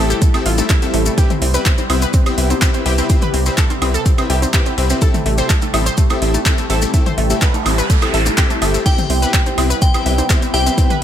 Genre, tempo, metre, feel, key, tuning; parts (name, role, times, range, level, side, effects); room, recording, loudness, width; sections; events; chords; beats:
progressive house; 125 BPM; 4/4; straight; A4 = 439 Hz
lush unison pad; sustained chords; 0.0-11.0 s; C3 to A4; -24 LUFS; left 1 dB; chorus, phaser, sidechain pumping
analog pluck; arpeggios; 0.0-11.0 s; A3 to C5; -23 LUFS; right 1 dB; chorus, sidechain pumping, digital delay
supersaw stab; stabs; 0.0-10.9 s; C4 to E5; -23 LUFS; left 4 dB; cassette tape, sidechain pumping, digital delay
tight sequencer bass; bass; 0.0-10.7 s; G1 to C2; -17 LUFS; equal; tube saturation, sidechain pumping
deep house drum kit; drums; 0.1-11.0 s; crash cymbal, handclaps, hi-hat, woodblock; -22 LUFS; right 2 dB; studio reverb
maracas; percussion; 0.1-11.0 s; -27 LUFS; left 5 dB
electronic kick drum; drums; 0.2-10.9 s; -15 LUFS; equal; studio reverb
electronic bongos, congas and toms; percussion; 0.5-11.0 s; -28 LUFS; left 6 dB; overdrive, sidechain pumping on perc, studio reverb, sidechain pumping on toms
noise sweep; sound effects; 7.1-8.9 s; -26 LUFS; right 4 dB
glassy synth bell; melody; 8.9-11.0 s; G5; -21 LUFS; left 1 dB; chorus, sidechain pumping, dub echo
little or no reverb; -13 LUFS; side -10 dB against mid
0.0-11.0 A section
noise sweep 7.1-8.9
0.0 Am7; 1.2 Cmaj7; 5.0 Am7; 8.9 Cmaj7
0.22 0.70 | 1.18 1.66 2.14 2.62 | 3.10 3.58 4.06 4.54 | 5.02 5.50 5.98 6.46 | 6.94 7.42 7.90 8.38 | 8.86 9.34 9.82 10.30 | 10.78